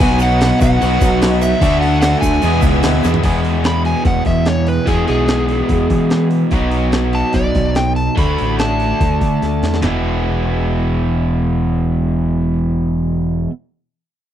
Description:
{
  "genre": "classic rock",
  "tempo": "146 BPM",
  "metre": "4/4",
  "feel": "straight",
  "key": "E mixolydian",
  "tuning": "A4 = 440 Hz",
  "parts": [
    { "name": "overdriven slide guitar", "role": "melody", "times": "0.0-9.8 s", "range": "G#4 to B5", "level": "-20 LUFS", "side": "equal", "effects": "none" },
    { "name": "fingerpicked twelve-string acoustic guitar", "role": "accompaniment", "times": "0.0-3.2 s", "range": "E2 to F#4", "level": "-23 LUFS", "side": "left 5 dB", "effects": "none" },
    { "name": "bright tonewheel organ", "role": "sustained chords", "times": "0.0-3.2 s", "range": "B3 to E5", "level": "-26 LUFS", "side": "left 1 dB", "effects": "none" },
    { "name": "crunchy overdriven guitar", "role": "riff", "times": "0.0-13.5 s", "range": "E2 to G#4", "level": "-17 LUFS", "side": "right 1 dB", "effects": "none" },
    { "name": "growling fingered electric bass", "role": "bass", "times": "0.0-13.5 s", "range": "E1 to E3", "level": "-18 LUFS", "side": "equal", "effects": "overdrive" },
    { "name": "jungle sampler-style drum kit", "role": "drums", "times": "0.0-9.9 s", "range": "crash cymbal, handclaps, hi-hat, kick drum, snare drum, toms", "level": "-19 LUFS", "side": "equal", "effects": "overdrive" },
    { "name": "tube shaker", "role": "percussion", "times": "0.2-3.2 s", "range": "none", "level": "-36 LUFS", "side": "right 20 dB", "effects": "none" }
  ],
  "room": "little or no reverb",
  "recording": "dry, close 1970s-style studio recording",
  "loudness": "-13 LUFS",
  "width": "side -10 dB against mid",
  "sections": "0.0-3.2 A section; 3.2-9.8 B section; 9.8-13.1 C section",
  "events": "drum fill 3.0, 9.4-9.8; electric slide guitar solo 3.2-9.8",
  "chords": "0.0 B; 1.6 Dadd9; 2.4 E; 6.5 B; 8.2 D; 9.8 E"
}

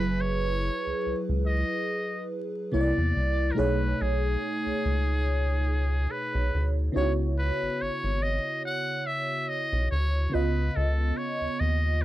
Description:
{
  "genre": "R&B",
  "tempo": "71 BPM",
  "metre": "4/4",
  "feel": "swing 54% on 16ths",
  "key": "C# minor",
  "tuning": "A4 = 441 Hz",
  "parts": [
    { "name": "trumpet with metal mute", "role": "melody", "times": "0.0-12.0 s", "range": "G#4 to F#5", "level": "-31 LUFS", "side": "equal", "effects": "none" },
    { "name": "FM electric piano with soft pad layer", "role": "accompaniment", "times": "0.0-12.0 s", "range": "B2 to D#5", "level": "-30 LUFS", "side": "right 1 dB", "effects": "chorus, phaser" },
    { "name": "rubbery square bass", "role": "bass", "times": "0.0-12.0 s", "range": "F#1 to E2", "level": "-26 LUFS", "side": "equal", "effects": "none" }
  ],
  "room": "little or no reverb",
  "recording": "dry, close 1970s-style studio recording, vinyl crackle",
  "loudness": "-25 LUFS",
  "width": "side -14 dB against mid",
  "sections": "0.0-12.0 A section",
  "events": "none",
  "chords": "0.0 F#9sus4; 2.7 C9; 3.6 B13; 6.9 C#m7; 10.3 C#9"
}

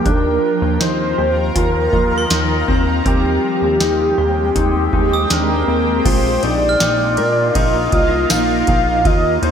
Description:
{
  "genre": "dream pop",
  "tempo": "80 BPM",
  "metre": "4/4",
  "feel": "straight",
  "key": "unclear",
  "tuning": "A4 = 444 Hz",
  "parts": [
    { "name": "warm velvety synth lead", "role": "melody", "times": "0.0-9.5 s", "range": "G4 to F5", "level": "-19 LUFS", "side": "right 1 dB", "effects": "chorus, digital delay" },
    { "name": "shimmering ambient pad", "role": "sustained chords", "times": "0.0-9.5 s", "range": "Eb3 to Bb4", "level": "-21 LUFS", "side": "equal", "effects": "chorus, built-in reverb, phaser" },
    { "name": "mellow electric guitar", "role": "arpeggios", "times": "0.0-9.5 s", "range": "C4 to Bb4", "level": "-21 LUFS", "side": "left 4 dB", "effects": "wide subtle chorus, digital delay" },
    { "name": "chorused synth bass", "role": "bass", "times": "0.1-9.5 s", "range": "Bb1 to Bb2", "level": "-21 LUFS", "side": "right 1 dB", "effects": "none" },
    { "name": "booming analog drum machine", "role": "drums", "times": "0.1-9.5 s", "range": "crash cymbal, hi-hat, kick drum, ride cymbal, snare drum, tambourine", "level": "-19 LUFS", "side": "right 1 dB", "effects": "gated reverb" },
    { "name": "glockenspiel with brass mallets", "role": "texture", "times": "2.2-9.4 s", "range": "C6 to F6", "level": "-26 LUFS", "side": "right 4 dB", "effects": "digital delay" }
  ],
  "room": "light reverb, digital ambience",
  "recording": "bright 1980s-style digital production",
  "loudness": "-13 LUFS",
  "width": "side -8 dB against mid",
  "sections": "0.0-6.1 A section; 6.1-9.5 B section",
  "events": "none",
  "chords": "0.1 Bbsus4/Eb; 3.1 Abmaj7/Eb; 6.1 Bbsus4"
}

